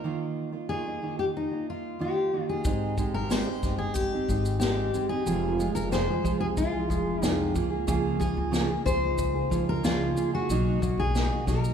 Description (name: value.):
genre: acoustic pop.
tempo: 92 BPM.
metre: 4/4.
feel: straight.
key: Ab major.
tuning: A4 = 435 Hz.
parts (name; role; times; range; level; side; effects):
fingerpicked steel-string acoustic guitar; melody; 0.0-11.7 s; Eb4 to C5; -30 LUFS; left 3 dB; none.
fingerpicked steel-string acoustic guitar; accompaniment; 0.0-11.7 s; F2 to Ab4; -30 LUFS; right 4 dB; none.
glassy FM pad; sustained chords; 3.5-11.7 s; B2 to G5; -38 LUFS; equal; none.
unplugged drum kit; drums; 2.6-11.7 s; kick drum, shaker, snare drum; -31 LUFS; left 1 dB; none.
upright bass; bass; 2.7-11.7 s; F1 to Db2; -31 LUFS; left 1 dB; none.
room: wet recital hall reverb, RT60 1.5 s.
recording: recorded in a church or concert hall.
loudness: -25 LUFS.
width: side -8 dB against mid.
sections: 0.0-2.7 A section; 2.7-11.7 B section.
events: none.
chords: 0.0 Ebsus2; 2.7 Abmaj7; 5.3 Fm; 7.6 Db6; 10.5 Bmaj7.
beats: | 0.04 0.69 1.35 2.00 | 2.65 3.31 3.96 4.61 | 5.27 5.92 6.57 7.22 | 7.88 8.53 9.18 9.84 | 10.49 11.14.